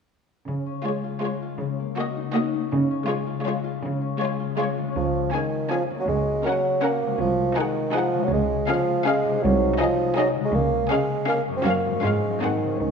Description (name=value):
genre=cinematic, playful, whimsical film cue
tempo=161 BPM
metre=3/4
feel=straight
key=Db major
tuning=A4 = 440 Hz
part: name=concert harp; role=arpeggios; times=0.5-12.9 s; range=Gb2 to Ab4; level=-29 LUFS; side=left 9 dB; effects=none
part: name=rich chamber cello section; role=bass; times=0.5-12.9 s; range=C2 to Db3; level=-26 LUFS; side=right 2 dB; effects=none
part: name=rich studio viola section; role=accompaniment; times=0.8-12.7 s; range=Ab3 to Eb4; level=-30 LUFS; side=right 1 dB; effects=none
part: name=rich studio violin section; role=melody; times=0.9-12.7 s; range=Db5 to Ab5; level=-31 LUFS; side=left 4 dB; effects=none
part: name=rich studio violin section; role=second line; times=0.9-12.7 s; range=F4 to Bb4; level=-33 LUFS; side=left 2 dB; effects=none
part: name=mellow bassoon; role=accompaniment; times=5.0-12.9 s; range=Eb3 to C4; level=-23 LUFS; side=right 3 dB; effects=none
room=moderate concert hall reverb, RT60 2.3 s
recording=minimal, uncompressed stereo recording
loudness=-21 LUFS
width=side -6 dB against mid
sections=0.5-5.0 A section; 5.0-12.9 B section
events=none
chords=0.5 Db; 1.6 Ebm7/Db; 2.7 Db; 6.1 Gb/Db; 7.2 Ab7/C; 8.3 Db; 9.4 Ab7/C; 10.5 Db; 11.7 Gbmaj7; 12.0 Db/Ab; 12.4 Ab7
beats=| 0.47 0.85 1.23 | 1.60 1.98 2.35 | 2.71 3.09 3.46 | 3.83 4.20 4.58 | 4.96 5.34 5.71 | 6.09 6.46 6.83 | 7.21 7.58 7.95 | 8.32 8.69 9.06 | 9.43 9.80 10.17 | 10.54 10.91 11.29 | 11.66 12.04 12.42 | 12.80